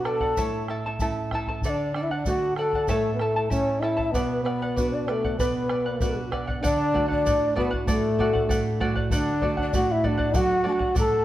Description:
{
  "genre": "andean folk, Andean ensemble",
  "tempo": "96 BPM",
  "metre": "2/4",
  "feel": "straight",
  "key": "unclear",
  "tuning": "A4 = 439 Hz",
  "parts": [
    { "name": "mellow trombone", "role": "melody", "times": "0.0-11.2 s", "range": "A3 to A4", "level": "-26 LUFS", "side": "equal", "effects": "none" },
    { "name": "breathy mellow large quena", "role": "second line", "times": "0.0-11.2 s", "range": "A4 to A#5", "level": "-29 LUFS", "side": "left 4 dB", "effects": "none" },
    { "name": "charango", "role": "accompaniment", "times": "0.0-11.2 s", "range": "E4 to A5", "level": "-31 LUFS", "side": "right 1 dB", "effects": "none" },
    { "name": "nylon-string guitar", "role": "accompaniment", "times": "0.0-11.2 s", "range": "A2 to F#4", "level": "-29 LUFS", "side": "right 3 dB", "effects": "none" },
    { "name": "bombo", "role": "percussion", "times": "0.1-11.1 s", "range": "none", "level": "-30 LUFS", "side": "equal", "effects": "none" },
    { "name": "egg shaker", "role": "percussion", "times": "0.4-11.1 s", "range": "none", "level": "-43 LUFS", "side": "right 5 dB", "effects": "none" }
  ],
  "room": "moderate recital hall reverb, RT60 1.4 s",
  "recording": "worn, warbling old tape, cassette tape, warbly pitch drift",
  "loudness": "-22 LUFS",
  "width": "side -14 dB against mid",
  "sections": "0.0-6.6 A section; 6.6-11.2 B section",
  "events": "speeding up 0.0-11.2",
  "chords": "0.4 A; 1.6 D; 2.9 A; 4.1 Bm; 6.6 D"
}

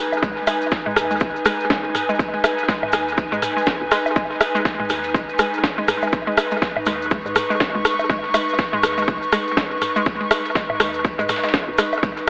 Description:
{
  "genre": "minimal techno",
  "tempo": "122 BPM",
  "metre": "4/4",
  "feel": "swing 59% on 16ths",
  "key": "G# minor",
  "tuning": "A4 = 439 Hz",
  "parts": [
    { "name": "airy breathy pad", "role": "texture", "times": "0.0-12.3 s", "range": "D#4 to C#6", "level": "-22 LUFS", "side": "equal", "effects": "chorus, sidechain pumping" },
    { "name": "booming analog drum machine", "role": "percussion", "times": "0.1-12.0 s", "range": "rim click, toms, woodblock", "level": "-22 LUFS", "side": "equal", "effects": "dub echo" },
    { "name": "maracas", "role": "percussion", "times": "0.1-12.3 s", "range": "none", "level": "-38 LUFS", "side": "equal", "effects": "dub echo" },
    { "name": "hollow square pluck", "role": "riff", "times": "0.2-12.1 s", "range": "G#3", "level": "-26 LUFS", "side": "equal", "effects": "chorus, sidechain pumping, dub echo" },
    { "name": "woody FM bass", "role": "bass", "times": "0.2-12.1 s", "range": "G#1 to G#2", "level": "-33 LUFS", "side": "equal", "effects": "sidechain pumping" },
    { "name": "dusty soul sampler-style drum kit", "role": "drums", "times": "0.2-12.3 s", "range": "hi-hat, ride cymbal, snare drum", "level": "-32 LUFS", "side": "equal", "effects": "none" },
    { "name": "electronic kick drum", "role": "drums", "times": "0.2-12.1 s", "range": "none", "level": "-22 LUFS", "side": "equal", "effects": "overdrive" },
    { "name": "house drum kit", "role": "drums", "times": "0.5-11.9 s", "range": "hi-hat, snare drum", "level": "-26 LUFS", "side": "equal", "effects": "overdrive" }
  ],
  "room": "moderate plate reverb, RT60 1.9 s",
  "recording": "echo-heavy mix, AM radio sound",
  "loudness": "-17 LUFS",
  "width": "side -30 dB against mid",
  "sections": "0.0-12.3 A section",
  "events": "none",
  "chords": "0.0 G#m"
}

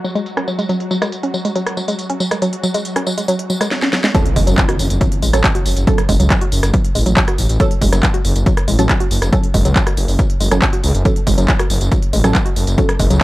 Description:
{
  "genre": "driving peak-time techno",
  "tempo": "139 BPM",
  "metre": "4/4",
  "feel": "straight",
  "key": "F# minor",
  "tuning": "A4 = 440 Hz",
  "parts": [
    { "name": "woody wave-folded pluck", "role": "riff", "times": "0.0-13.2 s", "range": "F#3 to F#4", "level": "-20 LUFS", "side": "equal", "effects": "chorus, sidechain pumping, analog delay" },
    { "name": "swarming drone", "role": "drone", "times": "0.0-3.7 s", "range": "F#3 to F#4", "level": "-28 LUFS", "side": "right 1 dB", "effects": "built-in reverb, sidechain pumping" },
    { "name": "techno drum kit", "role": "drums", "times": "0.0-13.2 s", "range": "handclaps, hi-hat, rim click, snare drum, tambourine", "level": "-21 LUFS", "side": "equal", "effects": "sidechain pumping on hats, sidechain pumping on perc" },
    { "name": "filtered dub chord stab", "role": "stabs", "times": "4.1-12.9 s", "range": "F#3 to A4", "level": "-23 LUFS", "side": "right 3 dB", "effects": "phaser, sidechain pumping, analog delay" },
    { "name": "electronic kick drum", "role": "drums", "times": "4.1-13.2 s", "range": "none", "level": "-16 LUFS", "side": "equal", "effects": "none" },
    { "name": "impact", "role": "sound effects", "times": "4.1-5.9 s", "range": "none", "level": "-24 LUFS", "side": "equal", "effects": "none" },
    { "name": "detuned saw bass", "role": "bass", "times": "4.4-13.2 s", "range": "F#1 to C#2", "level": "-16 LUFS", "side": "equal", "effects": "tube saturation, sidechain pumping" }
  ],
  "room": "digital ambience",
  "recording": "dry, gritty hardware recording, low-pass filter",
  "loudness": "-13 LUFS",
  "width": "side -18 dB against mid",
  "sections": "0.0-4.1 A section; 4.1-13.2 B section",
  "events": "filter sweep on synth arpeggio sound 0.0-4.1; filter sweep 0.0-4.1; drum fill 3.7-4.1; drop 4.1-13.2; impact 4.1-5.9",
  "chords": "0.0 F#5; 4.1 F#m"
}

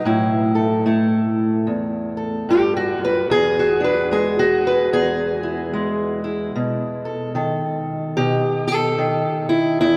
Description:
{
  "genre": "acoustic country blues, solo or duo",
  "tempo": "74 BPM",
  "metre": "4/4",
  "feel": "swing 61% on 8ths",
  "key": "unclear",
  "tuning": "A4 = 442 Hz",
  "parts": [
    { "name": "fingerpicked steel-string acoustic guitar", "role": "solo", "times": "0.0-10.0 s", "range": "E2 to B4", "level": "-20 LUFS", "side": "equal", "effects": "none" }
  ],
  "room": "wet cathedral reverb, RT60 5.3 s",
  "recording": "in a vast, echoing space",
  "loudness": "-20 LUFS",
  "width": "mono",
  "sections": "0.0-9.8 A section",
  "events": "none",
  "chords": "0.0 A5; 3.3 E7; 6.5 B7"
}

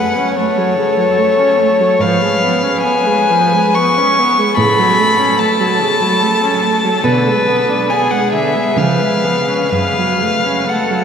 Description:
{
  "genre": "classical, slow romantic movement for string quartet",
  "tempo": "61-75 BPM",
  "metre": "3/4",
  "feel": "rubato",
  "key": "F# minor",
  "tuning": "A4 = 440 Hz",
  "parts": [
    { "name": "warm violin", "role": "melody", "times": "0.0-11.0 s", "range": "B4 to C#6", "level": "-14 LUFS", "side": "left 3 dB", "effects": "none" },
    { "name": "dark violin", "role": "second line", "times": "0.0-11.0 s", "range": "G#4 to B4", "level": "-19 LUFS", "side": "equal", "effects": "none" },
    { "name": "warm viola", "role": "accompaniment", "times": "0.0-11.0 s", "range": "C#3 to D4", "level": "-17 LUFS", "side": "right 4 dB", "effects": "none" },
    { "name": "dark cello", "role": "bass", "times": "0.0-10.5 s", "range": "F#2 to C#3", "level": "-24 LUFS", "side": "right 3 dB", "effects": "none" }
  ],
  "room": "wet cathedral reverb, RT60 6.5 s",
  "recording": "none",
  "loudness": "-11 LUFS",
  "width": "side -7 dB against mid",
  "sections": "0.0-11.0 A section",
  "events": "none",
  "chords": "0.0 F#m; 2.0 C#7/G#; 4.6 F#m/A; 7.0 G#dim/B; 8.8 C#7; 9.7 F#m"
}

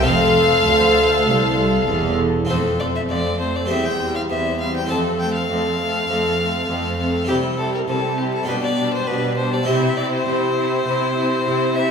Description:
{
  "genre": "classical, baroque-style concerto movement with solo episodes",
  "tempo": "100 BPM",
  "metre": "4/4",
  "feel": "straight",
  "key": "F major",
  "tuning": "A4 = 436 Hz",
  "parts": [
    { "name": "bright violin", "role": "melody", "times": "0.0-11.9 s", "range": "G4 to A5", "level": "-23 LUFS", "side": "left 3 dB", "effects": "none" },
    { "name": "clear symphonic violin section", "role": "second line", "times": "0.0-11.9 s", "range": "C4 to C5", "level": "-27 LUFS", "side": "left 1 dB", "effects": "none" },
    { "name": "clear studio viola section", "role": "accompaniment", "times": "0.0-11.9 s", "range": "G3 to A4", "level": "-23 LUFS", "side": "right 1 dB", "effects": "none" },
    { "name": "harpsichord", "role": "accompaniment", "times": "0.0-11.9 s", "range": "C2 to C5", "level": "-25 LUFS", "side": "equal", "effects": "none" },
    { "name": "clear symphonic cello section", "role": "bass", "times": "0.0-11.9 s", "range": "C2 to C3", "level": "-24 LUFS", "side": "right 3 dB", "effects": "none" },
    { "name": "dark chamber double bass section", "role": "bass", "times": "0.0-2.5 s", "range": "E1 to D2", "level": "-25 LUFS", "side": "right 2 dB", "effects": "none" },
    { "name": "clear symphonic violin section", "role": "melody", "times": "0.1-11.9 s", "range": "E4 to F5", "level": "-27 LUFS", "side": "left 5 dB", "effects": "none" }
  ],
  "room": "wet recital hall reverb, RT60 1.4 s",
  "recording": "recorded in a church or concert hall",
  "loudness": "-17 LUFS",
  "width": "side -6 dB against mid",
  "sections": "0.0-2.5 A section; 2.5-11.9 B section",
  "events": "none",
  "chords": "0.1 F; 3.7 C/E; 4.9 F; 7.3 C; 8.5 G/B; 9.7 C"
}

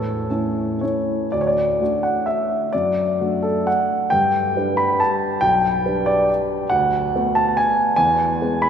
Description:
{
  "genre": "classical, romantic triple-time dance for piano with dotted rhythms",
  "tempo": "112-150 BPM",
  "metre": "3/4",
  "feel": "rubato",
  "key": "D major",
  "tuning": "A4 = 439 Hz",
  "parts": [
    { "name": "warm grand piano", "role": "solo", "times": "0.0-8.7 s", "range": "B1 to B5", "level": "-17 LUFS", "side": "equal", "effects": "none" }
  ],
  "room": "wet cathedral reverb, RT60 6.5 s",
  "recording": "recorded in a church or concert hall",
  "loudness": "-17 LUFS",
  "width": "side -8 dB against mid",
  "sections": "0.0-1.3 A section; 1.3-8.7 B section",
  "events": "none",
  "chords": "0.0 A; 1.3 D; 2.7 D/F#; 4.1 G; 5.4 G/B; 6.7 Bm7/D; 8.0 E"
}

